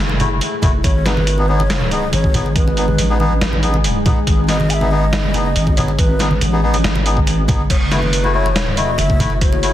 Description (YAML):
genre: deep dubstep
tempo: 140 BPM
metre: 4/4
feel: half-time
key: unclear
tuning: A4 = 435 Hz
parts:
  - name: deep dark ambient pad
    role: sustained chords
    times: 0.0-9.7 s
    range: G#3 to G#4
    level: -26 LUFS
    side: left 1 dB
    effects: chorus, built-in reverb
  - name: deep soft wobble bass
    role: bass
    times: 0.0-9.7 s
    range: F#1 to A1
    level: -18 LUFS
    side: equal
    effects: chorus, tube saturation
  - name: congas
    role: percussion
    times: 0.1-9.6 s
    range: none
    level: -23 LUFS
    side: right 1 dB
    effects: none
  - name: melodica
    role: stabs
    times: 0.2-9.7 s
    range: A3 to G#4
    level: -22 LUFS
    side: left 3 dB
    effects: dub echo
  - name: trip hop sampler-style drum kit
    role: drums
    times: 0.2-9.7 s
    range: crash cymbal, hi-hat, snare drum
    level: -22 LUFS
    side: equal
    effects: none
  - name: electronic kick drum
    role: drums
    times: 0.6-9.5 s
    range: none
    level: -16 LUFS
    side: equal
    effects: overdrive
  - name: breathy mellow low ney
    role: melody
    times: 0.8-9.7 s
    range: B4 to G#5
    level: -24 LUFS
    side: equal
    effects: dub echo
room: light reverb, digital ambience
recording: dense, heavily limited modern master, vinyl crackle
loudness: -13 LUFS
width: side -12 dB against mid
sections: 0.0-9.7 A section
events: none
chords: 0.0 F#m7; 0.8 G#m; 7.7 F#m7